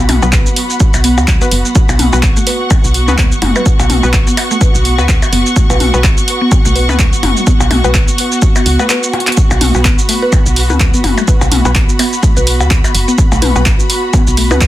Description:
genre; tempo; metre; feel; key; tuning
minimal techno; 126 BPM; 4/4; swing 57% on 16ths; B minor; A4 = 440 Hz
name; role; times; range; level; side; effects
mallet-like synth pluck; riff; 0.0-14.6 s; F#3 to B4; -19 LUFS; equal; chorus, sidechain pumping, tape echo
woody FM bass; bass; 0.0-14.7 s; F#1 to D2; -14 LUFS; equal; sidechain pumping
dark studio string section; texture; 0.0-14.7 s; B3 to C#6; -18 LUFS; right 1 dB; sidechain pumping
punchy analog drum machine; drums; 0.1-14.7 s; handclaps, hi-hat, shaker; -17 LUFS; right 1 dB; none
electronic toms and percussion blips; percussion; 0.1-14.6 s; none; -18 LUFS; left 4 dB; overdrive, tape echo
filtered dub chord stab; stabs; 0.2-14.6 s; B3 to B4; -22 LUFS; left 3 dB; chorus, tape echo
electronic kick drum; drums; 0.3-14.7 s; none; -11 LUFS; equal; none
room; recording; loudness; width
light reverb; dense, heavily limited modern master; -9 LUFS; side -14 dB against mid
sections
0.0-14.7 A section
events
break 8.9-9.4; drum fill 9.1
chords
0.0 B5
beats
0.33 0.80 1.28 | 1.75 2.23 2.71 3.18 | 3.66 4.13 4.61 5.09 | 5.56 6.04 6.52 6.99 | 7.47 7.95 8.42 8.90 | 9.37 9.85 10.33 10.80 | 11.28 11.75 12.23 12.71 | 13.18 13.66 14.13 14.61

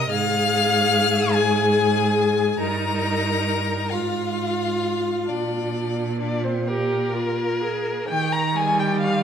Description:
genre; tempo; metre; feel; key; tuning
classical, slow romantic movement for string quartet; 42-48 BPM (dotted quarters); 6/8; rubato; Eb major; A4 = 445 Hz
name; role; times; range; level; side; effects
rich violin; melody; 0.0-9.2 s; Bb3 to F6; -27 LUFS; left 8 dB; none
rich violin; second line; 0.0-9.2 s; D4 to Bb5; -24 LUFS; left 3 dB; none
rich viola; accompaniment; 0.0-9.2 s; G3 to Ab4; -25 LUFS; equal; none
clear cello; bass; 0.0-9.2 s; G2 to Eb3; -25 LUFS; right 3 dB; none
room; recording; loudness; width
wet recital hall reverb, RT60 1.6 s; none; -19 LUFS; side -8 dB against mid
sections
0.0-8.1 A section; 8.1-9.2 B section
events
none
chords
0.1 Fm/Ab; 2.6 Eb/G; 3.9 Fm/Ab; 5.3 Bb; 8.1 Eb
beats
| 0.10 1.34 | 2.60 3.92 | 5.28 6.67 | 8.07

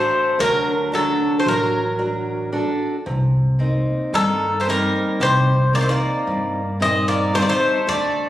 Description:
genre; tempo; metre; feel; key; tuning
greek folk, Greek bouzouki band; 112 BPM (eighths); 9/8; straight; unclear; A4 = 440 Hz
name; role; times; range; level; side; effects
Greek bouzouki; melody; 0.0-8.3 s; A4 to Eb5; -20 LUFS; left 1 dB; none
Greek bouzouki; second line; 0.0-8.3 s; Eb3 to C4; -25 LUFS; right 1 dB; none
picked steel-string acoustic guitar; accompaniment; 0.0-8.3 s; Bb2 to A4; -23 LUFS; right 1 dB; none
upright bass; bass; 0.0-8.3 s; A1 to G2; -23 LUFS; equal; none
room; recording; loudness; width
moderate recital hall reverb, RT60 1.3 s; recorded on a phone in the room, club reverb; -17 LUFS; side -13 dB against mid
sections
0.0-8.3 A section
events
none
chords
0.0 D; 3.1 Cm7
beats
0.39 0.93 1.46 2.00 2.53 | 3.06 3.60 4.13 4.67 5.21 5.74 6.28 6.81 7.34 | 7.88

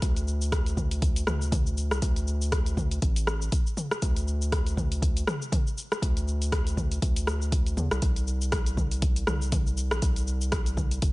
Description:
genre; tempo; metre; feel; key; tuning
afro house; 120 BPM; 4/4; swing 57% on 16ths; unclear; A4 = 435 Hz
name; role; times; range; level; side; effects
round analog bass; bass; 0.0-11.1 s; G1 to E2; -28 LUFS; equal; sidechain pumping
deep house drum kit; drums; 0.0-11.1 s; hi-hat, rim click, shaker, toms; -31 LUFS; left 1 dB; studio reverb
electronic kick drum; drums; 0.0-11.1 s; none; -26 LUFS; equal; studio reverb
room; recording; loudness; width
little or no reverb; nothing above 10.5 kHz; -24 LUFS; side -21 dB against mid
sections
0.0-11.1 A section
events
none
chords
none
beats
| 0.02 0.52 1.02 1.52 | 2.02 2.52 3.02 3.52 | 4.02 4.52 5.02 5.52 | 6.02 6.52 7.02 7.52 | 8.02 8.52 9.02 9.52 | 10.02 10.52 11.02

